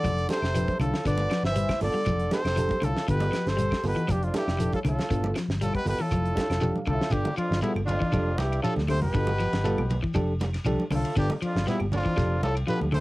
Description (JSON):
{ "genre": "afrobeat", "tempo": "119 BPM", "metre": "4/4", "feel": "straight", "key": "G mixolydian", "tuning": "A4 = 441 Hz", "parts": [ { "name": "breathy trumpet", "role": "melody", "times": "0.0-13.0 s", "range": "E4 to E5", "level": "-31 LUFS", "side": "equal", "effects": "cassette tape" }, { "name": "breathy alto saxophone", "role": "second line", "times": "0.0-13.0 s", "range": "B3 to C5", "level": "-36 LUFS", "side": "right 2 dB", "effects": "cassette tape" }, { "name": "muted trombone section", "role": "second line", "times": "0.0-13.0 s", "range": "E2 to E3", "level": "-37 LUFS", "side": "equal", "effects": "cassette tape" }, { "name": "electric guitar at the edge of break-up", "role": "arpeggios", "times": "0.0-13.0 s", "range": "D3 to G3", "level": "-30 LUFS", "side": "left 2 dB", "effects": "cassette tape" }, { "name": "fingered electric bass", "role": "bass", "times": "0.0-13.0 s", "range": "F1 to D2", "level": "-28 LUFS", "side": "equal", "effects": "none" }, { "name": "damped 70s drum kit", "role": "drums", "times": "0.0-13.0 s", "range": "hi-hat, kick drum, ride cymbal, snare drum, toms", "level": "-33 LUFS", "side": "equal", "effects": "cassette tape" }, { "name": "claves", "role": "percussion", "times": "0.0-13.0 s", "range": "none", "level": "-44 LUFS", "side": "right 2 dB", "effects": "none" }, { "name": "congas", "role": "percussion", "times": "0.0-13.0 s", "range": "none", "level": "-34 LUFS", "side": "right 2 dB", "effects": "none" }, { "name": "shekere", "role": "percussion", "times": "0.0-13.0 s", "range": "none", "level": "-34 LUFS", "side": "right 1 dB", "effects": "none" }, { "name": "reed electric piano", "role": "accompaniment", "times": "0.3-12.9 s", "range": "B3 to F5", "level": "-32 LUFS", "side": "right 2 dB", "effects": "overdrive, cassette tape" } ], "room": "light reverb", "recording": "home recording on cassette", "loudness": "-24 LUFS", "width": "side -19 dB against mid", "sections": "0.0-7.1 A section; 7.1-13.0 B section", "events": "reed electric piano fill 6.4-7.1; drum fill 6.6-7.1", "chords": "0.0 F6; 1.1 G9; 2.1 F6; 3.1 G9; 4.1 F6; 5.1 G9; 6.1 F6; 7.1 G9; 8.1 F6; 9.1 G9; 10.2 F6; 11.2 G9; 12.2 F6", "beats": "0.04 0.55 | 1.06 1.56 2.07 2.57 | 3.08 3.58 4.09 4.59 | 5.10 5.61 6.11 6.62 | 7.12 7.63 8.13 8.64 | 9.14 9.65 10.15 10.66 | 11.16 11.67 12.17 12.68" }